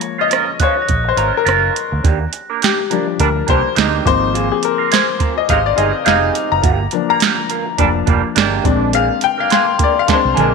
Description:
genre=lush 1970s-style soul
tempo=104 BPM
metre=4/4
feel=swing 58% on 16ths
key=Eb major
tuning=A4 = 439 Hz
part: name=clear grand piano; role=accompaniment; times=0.0-10.5 s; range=F3 to Bb5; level=-17 LUFS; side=left 13 dB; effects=none
part: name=electric guitar through a small old amp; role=riff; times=0.0-10.5 s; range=Bb3 to C5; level=-20 LUFS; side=right 13 dB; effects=wah
part: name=soft vintage rhythm box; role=drums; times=0.0-10.5 s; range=hi-hat, kick drum, rim click, snare drum, toms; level=-18 LUFS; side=right 4 dB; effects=none
part: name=glockenspiel with rubber mallets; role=texture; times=0.6-5.3, 9.5-10.5 s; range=C6 to Bb6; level=-25 LUFS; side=left 2 dB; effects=none
part: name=vintage muted fingered electric bass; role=bass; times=0.9-10.5 s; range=F1 to Eb2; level=-20 LUFS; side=right 1 dB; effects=none
part: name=brilliant trombone section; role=stabs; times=3.2-10.5 s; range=Bb2 to Eb4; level=-20 LUFS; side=right 13 dB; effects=none
room=light reverb, small room reverb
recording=1960s-style stereo with parts hard left and right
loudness=-13 LUFS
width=side -4 dB against mid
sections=0.0-10.5 A section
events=grand piano solo 0.0-10.5; drum fill 10.1-10.5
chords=0.0 Gbmaj7; 2.0 Ebmaj7; 4.1 Ab6; 6.6 Gm7; 8.6 Bb7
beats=0.31 0.89 1.46 | 2.04 2.62 3.19 3.77 | 4.34 4.91 5.49 6.06 | 6.64 7.21 7.79 8.36 | 8.94 9.51 10.08

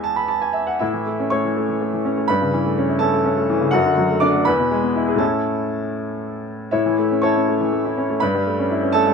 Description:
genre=classical, virtuoso piano study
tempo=81 BPM (dotted quarters)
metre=6/8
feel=uneven beats, rubato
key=A major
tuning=A4 = 437 Hz
part: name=clear baby grand piano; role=solo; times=0.0-9.1 s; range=E2 to D6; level=-17 LUFS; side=equal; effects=none
room=light reverb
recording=minimal, uncompressed stereo recording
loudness=-17 LUFS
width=side -5 dB against mid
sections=0.0-6.7 A section; 6.7-9.1 A section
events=none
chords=0.0 E; 0.8 A; 2.3 A7/G; 3.7 D/F#; 4.5 E; 5.2 A; 8.2 A7/G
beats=0.05 | 0.81 1.57 | 2.29 3.02 | 3.73 4.47 | 5.21 5.97 | 6.73 7.48 | 8.21 8.93

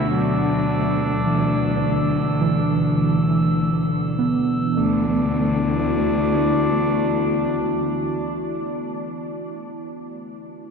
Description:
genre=ambient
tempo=52 BPM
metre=4/4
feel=straight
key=D major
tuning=A4 = 440 Hz
part: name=clear flugelhorn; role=melody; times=0.0-8.9 s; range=D4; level=-28 LUFS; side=right 1 dB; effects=diffuse ambient delay
part: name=warbly tape-like pad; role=sustained chords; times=0.0-9.4 s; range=B2 to F#4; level=-23 LUFS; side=left 2 dB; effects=chorus, built-in reverb
part: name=muted felt-like synth keys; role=arpeggios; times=0.0-10.7 s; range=E3 to B3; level=-23 LUFS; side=right 1 dB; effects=chorus, diffuse ambient delay
part: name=clear studio cello section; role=bass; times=0.0-8.2 s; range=D2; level=-28 LUFS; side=equal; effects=none
part: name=glass harmonica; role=texture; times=0.0-4.8 s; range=E6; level=-33 LUFS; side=right 4 dB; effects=none
room=wet huge ambient reverb, RT60 8.9 s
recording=none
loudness=-18 LUFS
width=side -5 dB against mid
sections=0.0-4.8 A section; 4.8-9.3 B section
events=none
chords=0.0 Bm/D; 4.8 Dadd9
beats=| 0.11 1.25 2.41 3.59 | 4.76 5.91 7.05 8.19

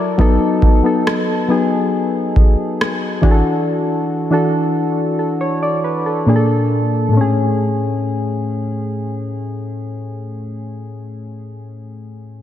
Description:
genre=contemporary R&B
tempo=69 BPM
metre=4/4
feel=straight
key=A major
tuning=A4 = 436 Hz
part: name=soft electric-piano-like synth keys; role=accompaniment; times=0.0-12.4 s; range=A2 to D5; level=-16 LUFS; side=left 1 dB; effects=chorus
part: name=booming analog drum machine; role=drums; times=0.2-3.4 s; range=kick drum, rim click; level=-14 LUFS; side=equal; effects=overdrive
room=moderate lush hall reverb, RT60 2.7 s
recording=dreamy mix soaked in reverb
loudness=-14 LUFS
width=side -11 dB against mid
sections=0.0-7.1 A section; 7.1-10.6 B section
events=none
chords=0.2 B7/F#; 3.2 E9sus4; 6.3 Bbmaj7; 7.1 Amaj7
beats=| 0.19 1.06 1.93 2.80 | 3.67 4.54 5.41 6.28 | 7.14 8.01 8.88 9.75

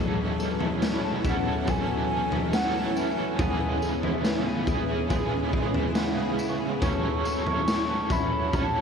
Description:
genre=dream pop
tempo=70 BPM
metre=4/4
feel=straight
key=unclear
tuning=A4 = 440 Hz
part: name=overdriven electric guitar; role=accompaniment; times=0.0-8.8 s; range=B2 to A4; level=-32 LUFS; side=right 5 dB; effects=tremolo, analog chorus, shimmer reverb
part: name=shimmering ambient pad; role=sustained chords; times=0.0-8.8 s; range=E3 to A4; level=-30 LUFS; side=equal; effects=chorus, built-in reverb, shimmer reverb
part: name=twelve-string electric guitar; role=arpeggios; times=0.0-8.8 s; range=F#3 to A4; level=-32 LUFS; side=left 7 dB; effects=ensemble chorus, ping-pong delay, shimmer reverb
part: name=raw garage drum kit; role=drums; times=0.4-8.7 s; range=kick drum, snare drum, tambourine, toms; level=-28 LUFS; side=equal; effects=none
part: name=hollow clarinet-like synth lead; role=melody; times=1.3-8.8 s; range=F#5 to C#6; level=-32 LUFS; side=right 1 dB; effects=chorus, ping-pong delay, shimmer reverb
part: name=soft synth bell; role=texture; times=5.1-8.8 s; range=F#5 to C#6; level=-43 LUFS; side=left 1 dB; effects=none
room=light reverb, small room ambience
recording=none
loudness=-24 LUFS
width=side -6 dB against mid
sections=0.0-8.8 A section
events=none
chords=0.0 B9sus4; 3.4 C#m7; 6.8 F#m7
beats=0.82 1.68 2.53 | 3.39 4.25 5.10 5.96 | 6.82 7.68 8.53

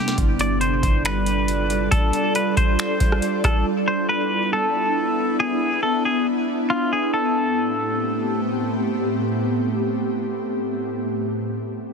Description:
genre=hip hop, atmospheric cloud-rap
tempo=138 BPM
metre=4/4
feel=half-time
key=A minor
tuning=A4 = 439 Hz
part: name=twangy electric guitar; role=melody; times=0.0-8.4 s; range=F4 to D5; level=-23 LUFS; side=left 1 dB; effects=tape echo
part: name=ethereal airy pad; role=sustained chords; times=0.0-10.9 s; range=A2 to D5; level=-22 LUFS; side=equal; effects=ensemble chorus, built-in reverb, sidechain pumping
part: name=booming analog drum machine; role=drums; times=0.1-3.6 s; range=finger snaps, hi-hat, kick drum, rim click, snare drum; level=-21 LUFS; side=equal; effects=overdrive
part: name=soft 808-style bass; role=bass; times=0.2-1.9 s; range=G1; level=-25 LUFS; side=equal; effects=none
room=little or no reverb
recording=heavily compressed radio sound, multiband compression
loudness=-19 LUFS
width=side -5 dB against mid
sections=0.0-7.1 A section; 7.1-10.6 B section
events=drum fill 0.0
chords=0.2 G7; 3.7 E7; 7.1 Am7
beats=| 0.18 0.61 1.05 1.48 | 1.92 2.35 2.79 3.22 | 3.66 4.09 4.53 4.96 | 5.40 5.83 6.26 6.70 | 7.13 7.57 8.01 8.44 | 8.87 9.31 9.74 10.18

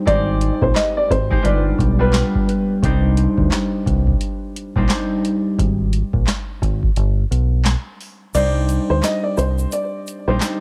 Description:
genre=hip hop, boom-bap hip-hop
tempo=87 BPM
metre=4/4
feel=swing 60% on 16ths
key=C harmonic minor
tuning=A4 = 440 Hz
part: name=concert harp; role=accompaniment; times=0.0-10.6 s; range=G3 to C5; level=-24 LUFS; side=equal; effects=cassette tape, high-pass filter, low-pass filter
part: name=dark upright piano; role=melody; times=0.1-2.3, 8.3-10.4 s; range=B4 to Eb5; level=-24 LUFS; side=equal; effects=high-pass filter, low-pass filter, cassette tape, tape echo
part: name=deep dub fingered electric bass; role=bass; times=0.1-10.4 s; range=G1 to D2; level=-21 LUFS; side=equal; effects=none
part: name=booming analog drum machine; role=drums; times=0.1-10.6 s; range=crash cymbal, handclaps, hi-hat, kick drum, snare drum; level=-24 LUFS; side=equal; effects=none
part: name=egg shaker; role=percussion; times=8.3-10.6 s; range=none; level=-38 LUFS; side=equal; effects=none
room=little or no reverb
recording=home recording on cassette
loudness=-19 LUFS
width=mono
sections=0.0-8.3 A section; 8.3-10.6 A section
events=kick muted 7.0-8.3, 8.3-10.6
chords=0.1 Abmaj7; 1.4 G7; 2.8 Cmadd9; 5.6 N.C.; 7.0 G; 8.3 Cmadd9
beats=| 0.07 0.76 1.45 2.14 | 2.83 3.52 4.21 4.90 | 5.59 6.28 6.97 7.66 | 8.35 9.04 9.72 10.41

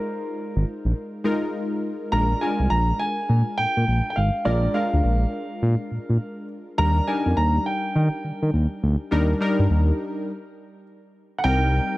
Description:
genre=R&B, new jack swing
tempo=103 BPM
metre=4/4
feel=swing 62% on 16ths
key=unclear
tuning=A4 = 438 Hz
part: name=dark baby grand piano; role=melody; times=0.0-12.0 s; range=Bb4 to Bb5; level=-26 LUFS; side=right 1 dB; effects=none
part: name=warm analog keys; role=accompaniment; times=0.0-12.0 s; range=G3 to Bb4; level=-27 LUFS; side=left 1 dB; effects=chorus
part: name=smooth synth bass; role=bass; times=0.6-11.8 s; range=Ab1 to Eb3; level=-20 LUFS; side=equal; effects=none
room=studio reverb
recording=none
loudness=-20 LUFS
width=side -18 dB against mid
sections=0.0-2.1 A section; 2.1-11.4 B section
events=stop 10.3-11.4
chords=0.0 Bb7sus4; 2.1 Bb7; 6.8 Ebmaj7; 11.4 Cm7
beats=0.38 0.96 1.54 | 2.12 2.71 3.29 3.87 | 4.45 5.04 5.62 6.20 | 6.78 7.37 7.95 8.53 | 9.11 9.70 10.28 10.86 | 11.45

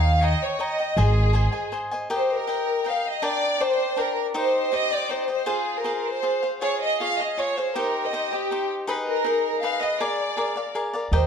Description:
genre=mexican folk, mariachi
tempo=160 BPM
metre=3/4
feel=straight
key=Eb major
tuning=A4 = 440 Hz
part: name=rich studio violin section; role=melody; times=0.0-11.3 s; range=G4 to F5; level=-24 LUFS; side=equal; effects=none
part: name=cavaquinho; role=accompaniment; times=0.0-11.3 s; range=D4 to Bb5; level=-28 LUFS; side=left 2 dB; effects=none
part: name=upright bass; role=bass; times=0.0-1.5, 11.1-11.3 s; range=Ab1 to Eb2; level=-19 LUFS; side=equal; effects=none
room=moderate recital hall reverb, RT60 1.3 s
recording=dark, warm production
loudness=-22 LUFS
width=side -7 dB against mid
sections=0.0-2.1 A section; 2.1-11.3 B section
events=none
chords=0.0 Eb7; 1.0 Ab; 2.1 Eb; 3.2 Gm; 4.3 Cm; 5.5 Fm; 6.6 Db; 7.8 Cm; 8.9 Abm; 10.0 Bb7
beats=0.23 0.60 | 0.97 1.34 1.72 | 2.10 2.48 2.86 | 3.23 3.60 3.97 | 4.34 4.72 5.09 | 5.47 5.85 6.23 | 6.62 7.00 7.38 | 7.75 8.13 8.50 | 8.88 9.25 9.62 | 9.99 10.37 10.74 | 11.12

